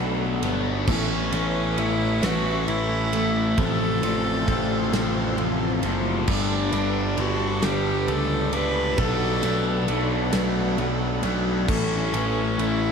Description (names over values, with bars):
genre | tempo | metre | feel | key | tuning
post-rock | 44 BPM (dotted quarters) | 6/8 | straight | unclear | A4 = 441 Hz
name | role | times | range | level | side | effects
bright symphonic string section | sustained chords | 0.0-12.9 s | A4 to C#6 | -37 LUFS | left 1 dB | none
electric guitar through a small old amp | arpeggios | 0.0-12.9 s | A4 to F#5 | -37 LUFS | right 4 dB | none
twangy electric guitar | arpeggios | 0.0-12.9 s | A2 to D4 | -34 LUFS | left 4 dB | none
biting overdriven guitar | riff | 0.0-12.9 s | F2 to B3 | -27 LUFS | left 9 dB | phaser
crunchy overdriven guitar | riff | 0.0-12.9 s | G2 to F4 | -30 LUFS | right 11 dB | spring reverb
fuzz picked electric bass | bass | 0.0-12.9 s | F#1 to C#2 | -27 LUFS | right 1 dB | overdrive
big rock drum kit | drums | 0.4-12.8 s | crash cymbal, kick drum, ride cymbal, snare drum | -31 LUFS | right 2 dB | none
clear viola | melody | 0.9-12.9 s | C#4 to B4 | -29 LUFS | right 1 dB | tape echo
room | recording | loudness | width
moderate huge ambient reverb, RT60 7.5 s | dreamy mix soaked in reverb | -21 LUFS | side -6 dB against mid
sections
0.0-12.9 A section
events
none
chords
0.0 Bm7; 0.9 A; 3.6 F/A; 6.3 Gadd9; 9.0 Bm7; 11.7 A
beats
| 0.88 2.23 | 3.58 4.93 | 6.28 7.63 | 8.98 10.33 | 11.69